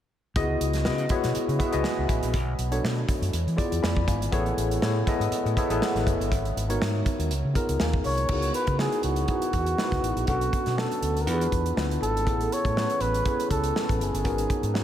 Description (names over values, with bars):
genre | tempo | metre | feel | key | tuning
polished 1980s jazz-funk pop | 121 BPM | 4/4 | swing 54% on 16ths | C# minor | A4 = 441 Hz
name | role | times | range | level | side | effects
tine electric piano | accompaniment | 0.4-14.8 s | B3 to B5 | -28 LUFS | left 1 dB | medium stereo tremolo, wide subtle chorus
overdriven fingered electric bass | bass | 0.4-14.8 s | F#1 to E3 | -28 LUFS | equal | none
modern studio drum kit | drums | 0.4-14.8 s | crash cymbal, hi-hat, kick drum, snare drum | -29 LUFS | equal | none
breathy flugelhorn | melody | 8.1-14.8 s | F#4 to C#5 | -28 LUFS | right 1 dB | diffuse ambient delay
room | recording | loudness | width
moderate cathedral reverb, RT60 4.6 s | dreamy mix soaked in reverb | -23 LUFS | side -10 dB against mid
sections
0.4-8.3 A section; 8.3-14.8 B section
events
none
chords
0.4 C#m11; 2.3 Bm7; 3.3 E7b9; 4.3 Amaj9; 6.3 G#m11; 7.3 C#13; 8.3 C#m11; 10.3 Bm7; 11.3 E7b9; 12.3 Amaj9; 14.3 G#m11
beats
| 0.35 0.85 1.35 1.84 | 2.34 2.84 3.33 3.83 | 4.32 4.82 5.32 5.81 | 6.31 6.81 7.30 7.80 | 8.29 8.79 9.29 9.78 | 10.28 10.78 11.27 11.77 | 12.27 12.76 13.26 13.76 | 14.25 14.75